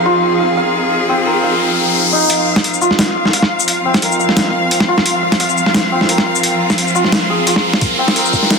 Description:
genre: half-time drum and bass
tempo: 174 BPM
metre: 4/4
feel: swing 54% on 16ths, half-time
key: F minor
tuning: A4 = 440 Hz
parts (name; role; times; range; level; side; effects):
- clear studio cello section; sustained chords; 0.0-8.6 s; F3 to F5; -18 LUFS; left 1 dB; sidechain pumping
- santur; arpeggios; 0.0-8.6 s; C4 to F5; -16 LUFS; equal; vintage 12-bit sampler grit, ping-pong delay
- riser; sound effects; 0.8-8.6 s; none; -21 LUFS; left 1 dB; none
- backwards swelling texture; texture; 0.0-8.6 s; F5; -26 LUFS; left 1 dB; none
- boom bap sampler-style drum kit; drums; 2.3-8.6 s; hi-hat, shaker, snare drum; -15 LUFS; equal; overdrive
- electronic kick drum; drums; 7.8-8.4 s; none; -20 LUFS; equal; overdrive
room: moderate huge ambient reverb, RT60 8.5 s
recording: dense, heavily limited modern master, high-pass filter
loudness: -11 LUFS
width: side -4 dB against mid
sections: 0.0-2.3 A section; 2.3-8.6 B section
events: riser 0.8-2.3, 2.3-8.6; build-up 2.3-8.6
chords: 0.0 F5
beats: 0.23 0.57 | 0.92 1.26 1.61 1.95 | 2.30 2.64 2.99 3.33 | 3.68 4.02 4.37 4.71 | 5.06 5.40 5.75 6.09 | 6.44 6.78 7.13 7.47 | 7.82 8.16 8.51

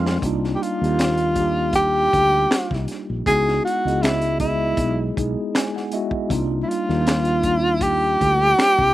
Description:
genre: R&B, neo-soul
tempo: 79 BPM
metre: 4/4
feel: swing 54% on 16ths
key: unclear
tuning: A4 = 440 Hz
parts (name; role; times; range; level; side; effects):
- mellow tine electric piano; accompaniment; 0.0-8.9 s; G3 to C6; -25 LUFS; equal; medium stereo tremolo, slapback echo
- mellow fretless electric bass; bass; 0.0-8.9 s; Bb1 to F2; -24 LUFS; equal; none
- crunchy breakbeat drum kit; drums; 0.1-8.9 s; finger snaps, hi-hat, kick drum, snare drum; -25 LUFS; equal; none
- breathy tenor saxophone; melody; 0.6-8.9 s; Fb4 to Ab4; -19 LUFS; equal; none
room: little or no reverb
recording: recorded outdoors, with no room sound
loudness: -18 LUFS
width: side -15 dB against mid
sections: 0.2-8.9 A section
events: tine electric piano fill 0.0, 5.2-6.3; drum fill 0.0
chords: 0.2 Cm9; 3.3 Dbm9; 6.3 Cm9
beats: | 0.22 0.98 1.74 2.50 | 3.26 4.02 4.78 5.54 | 6.30 7.06 7.82 8.58

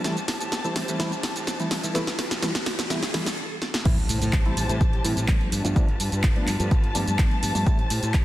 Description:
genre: filtered disco house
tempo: 126 BPM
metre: 4/4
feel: straight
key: A minor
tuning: A4 = 441 Hz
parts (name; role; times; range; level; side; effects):
- barky reed electric piano; accompaniment; 0.0-7.8 s; E3 to E4; -30 LUFS; equal; overdrive, fast tremolo, phaser, vintage 12-bit sampler grit, sidechain pumping, low-pass filter
- dark chamber string section; sustained chords; 0.0-8.2 s; F4 to A5; -33 LUFS; left 2 dB; sidechain pumping, low-pass filter
- fuzz fingered electric bass; bass; 0.0-8.2 s; G1 to A2; -30 LUFS; equal; overdrive, sidechain pumping, high-pass filter, low-pass filter
- punchy analog drum machine; drums; 0.0-8.2 s; crash cymbal, handclaps, hi-hat, shaker, snare drum; -28 LUFS; equal; sidechain pumping on hats, sidechain pumping on perc, sidechain pumping on cymbals
- riser and impact; sound effects; 0.0-5.8 s; none; -34 LUFS; equal; none
- electronic kick drum; drums; 3.9-8.2 s; none; -21 LUFS; equal; none
room: light reverb, digital ambience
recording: dense, heavily limited modern master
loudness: -22 LUFS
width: side -15 dB against mid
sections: 0.0-3.9 A section; 3.9-8.2 B section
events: build-up 0.0-3.9; drum fill 0.0-3.4, 3.6; riser 0.0-3.4; filter sweep 0.0-3.9; stop 3.4-3.9; drop 3.9-8.2; impact 3.9-5.8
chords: 0.0 Am7; 1.7 G9; 3.9 Am7; 5.5 G9; 7.7 Am7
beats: | 0.04 0.52 1.00 1.47 | 1.95 2.43 2.90 3.38 | 3.85 4.33 4.81 5.28 | 5.76 6.24 6.71 7.19 | 7.67 8.14

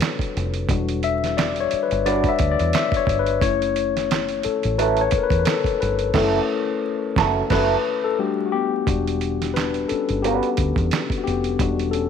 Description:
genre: R&B, neo-soul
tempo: 88 BPM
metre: 4/4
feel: swing 56% on 16ths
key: E dorian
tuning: A4 = 440 Hz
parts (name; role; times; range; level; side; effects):
- tine electric piano; accompaniment; 0.0-12.1 s; G3 to E5; -22 LUFS; left 7 dB; medium stereo tremolo
- dusty soul sampler-style drum kit; drums; 0.0-12.1 s; crash cymbal, handclaps, hi-hat, kick drum, snare drum; -25 LUFS; right 3 dB; overdrive
- deep dub fingered electric bass; bass; 0.4-12.1 s; E1 to E2; -26 LUFS; equal; none
- electric guitar through a small old amp; second line; 2.1-10.5 s; F#3 to B4; -23 LUFS; right 11 dB; wah
room: light reverb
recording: 1960s-style stereo with parts hard left and right, vinyl crackle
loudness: -19 LUFS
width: side -7 dB against mid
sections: 0.0-8.9 A section; 8.9-12.1 B section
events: tine electric piano solo 0.0-8.9, 8.9-12.1; band accent 6.1-8.9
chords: 0.0 Em9; 3.4 F#m7; 8.2 Gmaj9; 8.9 Em9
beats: 0.01 | 0.69 1.37 2.05 2.73 | 3.42 4.10 4.78 5.46 | 6.14 6.82 7.50 8.19 | 8.87 9.55 10.23 10.91 | 11.60

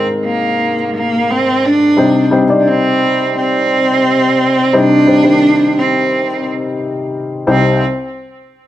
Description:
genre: pop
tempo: 87 BPM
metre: 4/4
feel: straight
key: C minor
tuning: A4 = 442 Hz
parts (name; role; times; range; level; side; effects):
- dark cello; melody; 0.0-7.8 s; Bb3 to D4; -12 LUFS; right 2 dB; none
- dark upright piano; accompaniment; 0.0-7.8 s; C2 to D5; -15 LUFS; left 2 dB; none
room: moderate large studio reverb, RT60 0.8 s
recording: none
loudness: -10 LUFS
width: side -13 dB against mid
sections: 0.0-7.5 A section; 7.5-8.7 B section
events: none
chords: 0.0 Abadd9; 2.0 Cm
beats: 0.59 1.28 | 1.97 2.66 3.35 4.04 | 4.73 5.42 6.11 6.80 | 7.49

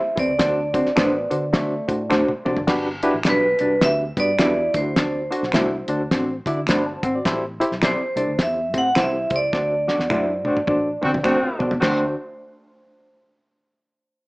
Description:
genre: uptempo 1960s-style soul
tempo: 105 BPM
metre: 4/4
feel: swing 61% on 8ths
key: D mixolydian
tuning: A4 = 440 Hz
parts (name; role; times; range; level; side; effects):
- vibraphone with hard mallets; melody; 0.0-11.2 s; B4 to F#5; -22 LUFS; right 1 dB; none
- barky reed electric piano; accompaniment; 0.2-12.1 s; D4 to B5; -25 LUFS; equal; overdrive, medium tremolo
- vintage hollow-body jazz guitar; riff; 0.2-12.1 s; A3 to F#4; -27 LUFS; left 1 dB; none
- vintage muted picked electric bass; bass; 0.2-12.1 s; F#1 to D3; -31 LUFS; equal; none
- cloth-damped thuddy drum kit; drums; 0.2-12.0 s; crash cymbal, hi-hat, kick drum, snare drum, toms; -24 LUFS; equal; none
- mellow electric guitar; stabs; 1.0-12.0 s; G3 to C5; -26 LUFS; equal; spring reverb
- finger snap; percussion; 1.0-12.1 s; none; -29 LUFS; equal; none
- warm horn section; second line; 10.5-12.1 s; D3 to F#4; -25 LUFS; equal; none
room: moderate studio reverb, RT60 0.7 s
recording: small speaker sound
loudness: -18 LUFS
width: side -24 dB against mid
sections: 0.0-2.7 A section; 2.7-11.8 B section; 11.8-14.1 C section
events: drum fill 2.1-2.7, 9.5-11.8; band accent 9.5-11.8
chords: 0.4 D7; 2.7 Gmaj7; 4.7 D7; 7.2 Am7; 9.5 D7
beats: | 0.40 0.97 1.54 2.11 | 2.68 3.25 3.82 4.39 | 4.96 5.54 6.11 6.68 | 7.25 7.82 8.39 8.96 | 9.53 10.10 10.67 11.24 | 11.81

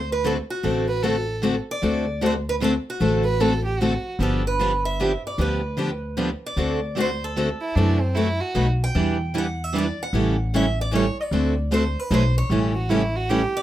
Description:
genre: acoustic string swing (jazz manouche)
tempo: 152 BPM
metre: 3/4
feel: swing 63% on 8ths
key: D mixolydian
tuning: A4 = 437 Hz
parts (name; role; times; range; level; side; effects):
- picked steel-string acoustic guitar; melody; 0.0-13.6 s; F#4 to G5; -28 LUFS; right 2 dB; none
- upright bass; bass; 0.0-13.4 s; G1 to F#2; -24 LUFS; equal; none
- picked steel-string acoustic guitar; accompaniment; 0.2-13.4 s; B2 to A4; -25 LUFS; left 4 dB; none
- picked steel-string acoustic guitar; accompaniment; 0.2-13.4 s; B2 to B4; -26 LUFS; right 5 dB; none
- rich violin; second line; 0.9-4.1, 7.6-8.7, 12.7-13.6 s; C4 to B4; -26 LUFS; right 3 dB; none
room: moderate studio reverb, RT60 0.5 s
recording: rough home demo mix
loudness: -20 LUFS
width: side -13 dB against mid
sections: 0.0-13.6 A section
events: none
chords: 0.0 D7; 4.2 G7; 6.6 D7; 7.8 F#m7b5; 8.5 B7; 8.9 Em7; 10.1 A7; 11.3 D7; 12.1 B7b9; 12.5 A7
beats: 0.24 | 0.64 1.04 1.43 | 1.83 2.22 2.62 | 3.01 3.41 3.81 | 4.20 4.59 4.99 | 5.39 5.78 6.18 | 6.57 6.97 7.36 | 7.76 8.15 8.55 | 8.95 9.34 9.73 | 10.13 10.53 10.92 | 11.31 11.71 12.11 | 12.50 12.89 13.29

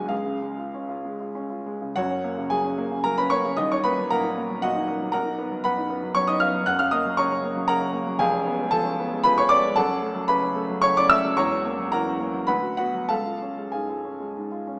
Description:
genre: classical, romantic character piece for solo piano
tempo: 92-120 BPM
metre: 3/4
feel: rubato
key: F# major, F# minor from 8.2 s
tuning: A4 = 439 Hz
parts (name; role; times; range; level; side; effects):
- warm grand piano; solo; 0.0-14.8 s; D#1 to F#6; -21 LUFS; equal; none
room: moderate scoring stage reverb, RT60 2.0 s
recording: small speaker sound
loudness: -21 LUFS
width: side -28 dB against mid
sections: 0.0-2.0 A section; 2.0-14.8 B section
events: none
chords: 0.1 C#; 2.0 F#; 3.6 D#m; 5.1 Bmaj7; 6.7 F#; 8.2 C#7/E#; 9.8 F#m; 11.4 F#7/E; 12.5 Bm/D; 13.1 C#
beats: | 0.11 0.74 1.34 | 1.95 2.50 3.04 | 3.56 4.10 4.63 | 5.13 5.65 6.16 | 6.67 7.18 7.69 | 8.20 8.71 9.23 | 9.76 10.29 10.82 | 11.37 11.93 12.49 | 13.10 13.74 14.36

